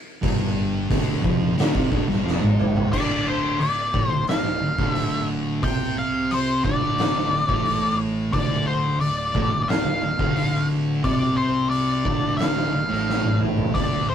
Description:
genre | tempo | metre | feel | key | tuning
stoner and doom metal | 89 BPM | 4/4 | straight | D minor | A4 = 439 Hz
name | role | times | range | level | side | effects
thick fuzz guitar | riff | 0.2-14.1 s | D2 to C4 | -28 LUFS | left 5 dB | distortion
thick fuzz guitar | riff | 0.2-14.1 s | D2 to C4 | -26 LUFS | right 3 dB | distortion
fuzz fingered electric bass | bass | 0.2-14.1 s | D1 to C2 | -32 LUFS | equal | overdrive
oversized low-tuned drum kit | drums | 0.2-13.9 s | crash cymbal, hi-hat, kick drum, snare drum, toms | -24 LUFS | right 1 dB | none
octave-fuzz lead guitar | melody | 2.9-14.1 s | C5 to G5 | -24 LUFS | left 2 dB | wah, distortion
room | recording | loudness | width
light reverb | rough rehearsal-room recording | -20 LUFS | side -9 dB against mid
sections
0.0-2.9 A section; 2.9-14.1 B section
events
drum fill 2.2-2.9, 13.1-13.8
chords
0.0 Dm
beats
| 0.23 0.90 1.57 2.25 | 2.92 3.60 4.28 4.95 | 5.63 6.30 6.98 7.66 | 8.34 9.01 9.69 10.37 | 11.04 11.72 12.40 13.07 | 13.75

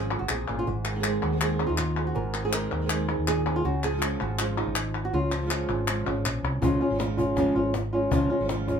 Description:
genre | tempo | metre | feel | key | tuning
flamenco | 161 BPM | 4/4 | straight | Db major | A4 = 442 Hz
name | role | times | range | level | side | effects
flamenco guitar | melody | 0.0-8.8 s | Ab2 to Bb4 | -28 LUFS | equal | none
flamenco guitar | stabs | 0.0-8.8 s | Db3 to Ab4 | -32 LUFS | right 4 dB | none
woody fretless electric bass | bass | 0.0-8.8 s | Ab1 to Eb2 | -30 LUFS | equal | none
palmas hand claps | percussion | 0.1-6.6 s | none | -31 LUFS | left 4 dB | none
cajon | percussion | 6.6-8.8 s | none | -31 LUFS | left 3 dB | none
room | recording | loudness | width
wet small room reverb, RT60 0.6 s | band playing live in one room | -24 LUFS | side -7 dB against mid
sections
0.0-6.6 A section; 6.6-8.8 B section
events
none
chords
0.0 Db; 0.7 Ab; 3.6 Db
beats
0.30 | 0.67 1.04 1.42 1.79 | 2.16 2.53 2.90 3.27 | 3.65 4.02 4.39 4.76 | 5.13 5.51 5.88 6.25 | 6.62 7.00 7.37 7.74 | 8.12 8.49

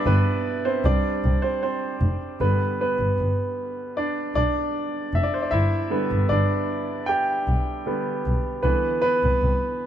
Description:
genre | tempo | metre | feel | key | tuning
pop ballad | 77 BPM | 4/4 | straight | unclear | A4 = 441 Hz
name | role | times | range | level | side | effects
bright grand piano | accompaniment | 0.0-9.9 s | D3 to G5 | -23 LUFS | right 1 dB | none
dark double bass | bass | 0.1-9.5 s | F1 to C2 | -23 LUFS | equal | none
room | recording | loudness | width
light reverb | dark, warm production | -21 LUFS | side -10 dB against mid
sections
0.0-2.4 A section; 2.4-9.9 B section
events
grand piano solo 0.0-2.4, 2.4-9.9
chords
0.0 G; 0.8 Csus2; 2.4 G; 8.6 Cmaj7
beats
0.06 0.84 1.62 | 2.40 3.18 3.96 4.74 | 5.52 6.30 7.08 7.86 | 8.63 9.41

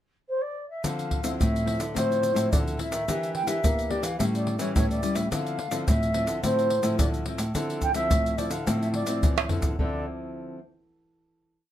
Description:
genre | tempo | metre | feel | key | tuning
samba and choro | 107 BPM | 4/4 | straight | D minor | A4 = 440 Hz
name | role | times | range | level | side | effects
baroque flute | melody | 0.3-10.1 s | C5 to G5 | -29 LUFS | equal | none
nylon-string guitar | accompaniment | 0.8-10.6 s | A2 to G4 | -32 LUFS | left 2 dB | none
nylon-string guitar | bass | 0.8-10.1 s | A2 to Bb3 | -30 LUFS | equal | none
egg shaker, surdo, pandeiro and tamborim | percussion | 0.8-9.9 s | none | -27 LUFS | equal | none
room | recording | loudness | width
light reverb | none | -24 LUFS | side -12 dB against mid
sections
0.0-0.8 pickup bar; 0.8-9.8 A section; 9.8-11.7 final chord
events
drum fill 9.4-9.8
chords
0.0 N.C.; 0.8 Dm9; 3.1 Em7b5; 4.2 A7; 5.3 Dm9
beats
0.28 | 0.84 1.40 1.96 2.52 | 3.08 3.64 4.20 4.76 | 5.32 5.88 6.44 7.00 | 7.56 8.12 8.68 9.24 | 9.79 10.35

